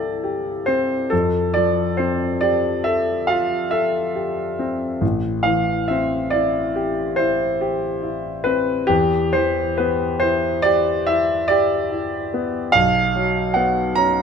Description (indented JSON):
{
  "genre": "classical, impressionist solo piano",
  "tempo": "46 BPM (dotted quarters)",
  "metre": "9/8",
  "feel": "rubato",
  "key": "unclear",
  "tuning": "A4 = 443 Hz",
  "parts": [
    { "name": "clear concert grand piano", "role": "solo", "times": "0.0-14.2 s", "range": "A1 to Bb5", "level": "-18 LUFS", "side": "equal", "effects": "none" }
  ],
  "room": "moderate recital hall reverb, RT60 1.7 s",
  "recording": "close, detailed microphones",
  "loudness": "-18 LUFS",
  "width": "side -6 dB against mid",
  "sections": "0.0-14.2 A section",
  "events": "none",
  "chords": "0.0 C69; 1.1 Fmaj9; 5.0 Am7; 8.9 Em7; 12.7 Bsus2"
}